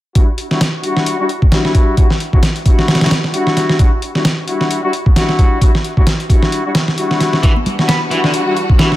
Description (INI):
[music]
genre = breakbeat, breaks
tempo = 132 BPM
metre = 4/4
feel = swing 57% on 16ths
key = E minor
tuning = A4 = 439 Hz
[part]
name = mellow brass ensemble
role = stabs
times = 0.2-9.0 s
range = G3 to F#4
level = -18 LUFS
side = left 2 dB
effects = low-pass filter, analog delay
[part]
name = dusty soul sampler-style drum kit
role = drums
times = 0.2-9.0 s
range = hi-hat, kick drum, snare drum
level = -12 LUFS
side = equal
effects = none
[part]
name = rich studio string section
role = sustained chords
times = 7.4-9.0 s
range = E3 to F#4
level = -22 LUFS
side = left 1 dB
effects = sidechain pumping
[part]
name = overdriven electric guitar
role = riff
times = 7.4-8.9 s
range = D3 to B3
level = -18 LUFS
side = right 1 dB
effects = analog delay
[part]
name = congas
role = percussion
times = 7.6-7.9 s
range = none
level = -23 LUFS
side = left 1 dB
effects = analog delay
[sound]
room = light reverb, small room ambience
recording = echo-heavy mix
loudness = -11 LUFS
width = side -15 dB against mid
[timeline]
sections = 0.2-9.0 A section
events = none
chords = 0.2 Em9